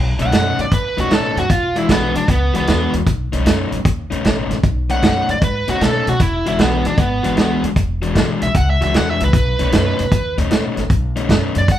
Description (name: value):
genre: electric blues shuffle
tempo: 153 BPM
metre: 4/4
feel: swing 67% on 8ths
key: B mixolydian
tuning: A4 = 440 Hz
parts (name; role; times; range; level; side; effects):
- upright bass; bass; 0.0-11.8 s; E1 to B2; -20 LUFS; equal; none
- smooth overdriven lead guitar; melody; 0.2-11.8 s; B3 to F#5; -19 LUFS; right 1 dB; none
- overdriven semi-hollow guitar; riff; 0.2-11.6 s; B2 to F#4; -22 LUFS; left 4 dB; none
- warm soul drum kit; drums; 0.2-11.8 s; hi-hat, kick drum, snare drum; -17 LUFS; right 1 dB; none
room: light reverb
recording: band playing live in one room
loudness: -14 LUFS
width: side -11 dB against mid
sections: 0.0-11.8 A section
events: lead electric guitar solo 0.0-11.8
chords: 0.0 B9; 1.5 E9; 3.1 B9; 6.2 E9; 9.3 B9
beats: 0.33 0.72 1.11 | 1.50 1.89 2.29 2.68 | 3.07 3.46 3.85 4.25 | 4.64 5.03 5.42 5.81 | 6.20 6.60 6.99 7.38 | 7.77 8.16 8.55 8.95 | 9.34 9.73 10.12 10.51 | 10.90 11.29 11.68